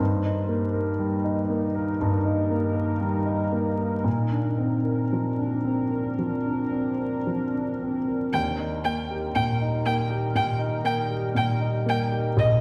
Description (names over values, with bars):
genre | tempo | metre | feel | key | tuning
neoclassical piano and strings | 58 BPM | 4/4 | uneven beats, rubato | unclear | A4 = 439 Hz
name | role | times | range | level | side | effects
clear grand piano | accompaniment | 0.0-12.6 s | Bb1 to Bb4 | -27 LUFS | equal | none
deep dark ambient pad | sustained chords | 0.0-12.6 s | G3 to Bb4 | -33 LUFS | equal | chorus, built-in reverb
rich violin | melody | 8.3-12.5 s | Eb5 to G5 | -30 LUFS | equal | slapback echo
room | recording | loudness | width
wet recital hall reverb, RT60 1.6 s | heard from further back in the room, vinyl crackle | -26 LUFS | mono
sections
0.0-8.3 A section; 8.3-12.6 B section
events
none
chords
0.0 Eb/G; 4.1 Bbadd9; 8.3 Eb